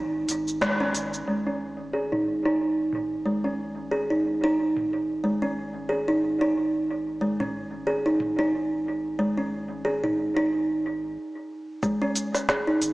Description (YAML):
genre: organic downtempo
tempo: 91 BPM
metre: 4/4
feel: swing 57% on 16ths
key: unclear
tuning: A4 = 442 Hz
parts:
  - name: warm sub bass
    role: bass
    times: 0.0-12.9 s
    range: G#1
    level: -45 LUFS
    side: equal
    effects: sidechain pumping
  - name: organic electronic drum kit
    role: drums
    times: 0.3-12.9 s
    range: hi-hat, shaker, snare drum, toms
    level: -29 LUFS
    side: equal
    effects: low-pass filter on perc, low-pass filter on hats, low-pass filter on snare, low-pass filter on toms, low-pass filter on room
  - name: kalimba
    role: arpeggios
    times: 0.6-12.8 s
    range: G#3 to G#4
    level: -24 LUFS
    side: right 1 dB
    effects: vintage 12-bit sampler grit, low-pass filter, analog delay
  - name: electronic kick drum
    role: drums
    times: 0.6-0.8, 11.8-12.6 s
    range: none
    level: -35 LUFS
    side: equal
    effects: overdrive
room: wet plate reverb, RT60 2.3 s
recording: echo-heavy mix, small speaker sound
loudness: -24 LUFS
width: side -19 dB against mid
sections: 0.0-1.3 A section; 1.3-11.8 B section; 11.8-12.9 A section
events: band accent 0.6-0.9; stop 11.2-11.8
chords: 0.0 N.C.; 1.3 G#5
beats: 0.62 | 1.28 1.94 2.60 3.26 | 3.92 4.58 5.23 5.89 | 6.55 7.21 7.87 8.53 | 9.19 9.85 10.51 11.17 | 11.83 12.49